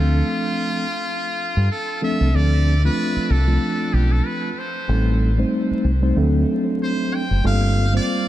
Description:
hip hop, jazz-hop; 94 BPM; 4/4; swing 57% on 16ths; D dorian; A4 = 438 Hz
trumpet with metal mute; melody; 0.0-8.3 s; F4 to G5; -26 LUFS; equal; tape echo
mellow tine electric piano; accompaniment; 0.0-8.3 s; F3 to C5; -22 LUFS; equal; medium stereo tremolo
deep dub fingered electric bass; bass; 0.0-8.0 s; F#1 to G2; -17 LUFS; equal
moderate huge ambient reverb, RT60 7.3 s; dreamy mix soaked in reverb, vinyl crackle; -17 LUFS; side -13 dB against mid
0.0-2.3 A section; 2.3-8.3 B section
0.0 Dm7; 4.9 Am7b5; 6.2 D7; 7.4 Gm11

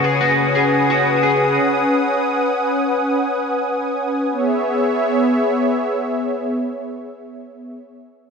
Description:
dream pop; free time; C# minor; A4 = 440 Hz
warm analog pad; sustained chords; 0.0-7.8 s; B3 to D#6; -18 LUFS; equal; chorus
electric guitar at the edge of break-up; arpeggios; 0.0-2.1 s; C#3 to G#4; -18 LUFS; left 3 dB; analog chorus, dub echo
wet spring reverb, RT60 2.5 s; echo-heavy mix; -16 LUFS; side -5 dB against mid
0.0-4.3 A section; 4.3-7.0 B section
0.0 G#m7/C#; 4.3 C#m7

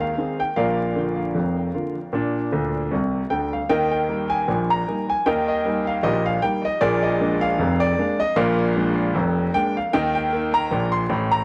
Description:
ragtime piano; 77 BPM; 2/4; swing 56% on 16ths; Eb major; A4 = 440 Hz
warm grand piano; solo; 0.0-11.4 s; F1 to C6; -22 LUFS; equal; tape echo
moderate spring reverb, RT60 1.2 s, small room ambience; dry, gritty hardware recording, vinyl crackle; -22 LUFS; mono
0.0-11.4 A section
grand piano fill 2.5-3.7
0.0 Ab; 0.6 Bb; 3.7 Eb; 6.8 Bb7; 9.9 Eb5

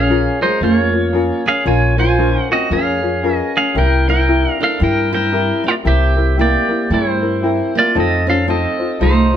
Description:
Hawaiian; 114 BPM; 4/4; swing 61% on 8ths; A4 = 443 Hz
pedal steel guitar; melody; 0.0-9.4 s; Eb4 to Ab5; -17 LUFS; right 1 dB
fingerpicked steel-string acoustic guitar; second line; 0.0-9.4 s; G3 to F4; -20 LUFS; right 2 dB
tenor ukulele; accompaniment; 0.0-9.4 s; C4 to C5; -20 LUFS; left 5 dB
upright bass; bass; 0.0-9.4 s; Bb1 to G2; -18 LUFS; equal
light reverb; band playing live in one room; -13 LUFS; side -9 dB against mid
0.0-9.4 A section
0.0 Bbm7; 3.8 C7; 8.0 F7

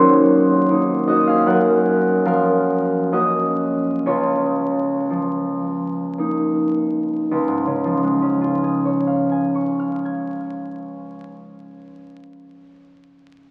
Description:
classical, solo harp piece; 52-78 BPM; 3/4; rubato; Db major; A4 = 441 Hz
concert harp; solo; 0.0-12.1 s; Db2 to Ab6; -19 LUFS; equal
wet cathedral reverb, RT60 4.9 s; very old 78 rpm record, vinyl crackle; -19 LUFS; mono
0.0-7.3 A section; 7.3-10.6 B section
slowing down 0.3-7.3
0.0 Ebm7; 1.5 Gbmaj7; 4.1 Db69; 7.3 Db

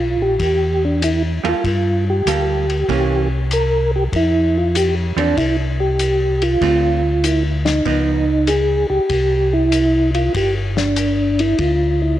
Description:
soul jazz organ trio; 97 BPM; 4/4; swing 68% on 8ths; C major; A4 = 435 Hz
percussive tonewheel organ; melody; 0.0-12.2 s; D4 to Bb4; -17 LUFS; right 1 dB; slow rotary speaker, chorus vibrato
mellow tonewheel organ; bass; 0.0-12.2 s; G1 to G2; -20 LUFS; left 1 dB; chorus vibrato, slow rotary speaker
warm soul drum kit; drums; 0.4-11.8 s; hi-hat, kick drum, ride cymbal, snare drum; -26 LUFS; left 4 dB
vintage hollow-body jazz guitar; accompaniment; 1.4-8.2 s; D3 to A4; -23 LUFS; right 9 dB
moderate echo chamber reverb, RT60 2.2 s; 1960s-style stereo; -15 LUFS; side -12 dB against mid
0.0-12.2 A section
0.0 Asus2 (rootless); 1.6 Gm9; 2.9 C7b9; 4.1 F5; 6.6 Dm7; 7.9 Db9; 9.1 Cadd9; 11.6 Dm

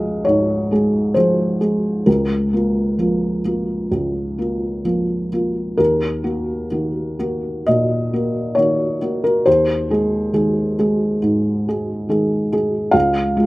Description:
neoclassical minimalist piano; 60-71 BPM; 4/4; rubato; Eb dorian; A4 = 443 Hz
felt-muted upright piano; solo; 0.0-13.5 s; Db2 to F5; -16 LUFS; equal
light reverb; recorded outdoors, with no room sound; -16 LUFS; side -20 dB against mid
0.0-5.8 A section; 5.8-13.5 A section
0.0 Db; 2.1 Bbm/Db; 5.8 Ebm; 9.5 Ab/Eb; 12.9 Db

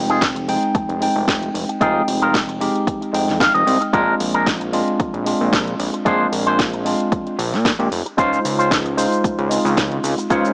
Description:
nu-disco, nu disco; 113 BPM; 4/4; swing 54% on 16ths; F minor; A4 = 440 Hz
tine electric piano; accompaniment; 0.0-10.5 s; Ab3 to G5; -20 LUFS; equal; analog delay
fat analog bass; bass; 0.0-10.5 s; F1 to Bb2; -23 LUFS; equal
electric guitar with an envelope filter; riff; 0.1-10.5 s; Db4 to F5; -19 LUFS; equal; wide subtle chorus, low-pass filter, analog delay
house drum kit; drums; 0.1-10.5 s; hi-hat, shaker, snare drum; -23 LUFS; equal; overdrive
electronic kick drum; drums; 0.2-10.4 s; -21 LUFS; equal; overdrive
light reverb; dry, gritty hardware recording, cassette tape, small speaker sound; -16 LUFS; side -37 dB against mid
0.0-10.5 A section
clean electric guitar fill 3.1-3.9
0.0 Fm7; 3.9 Bb7; 8.2 Dbmaj7

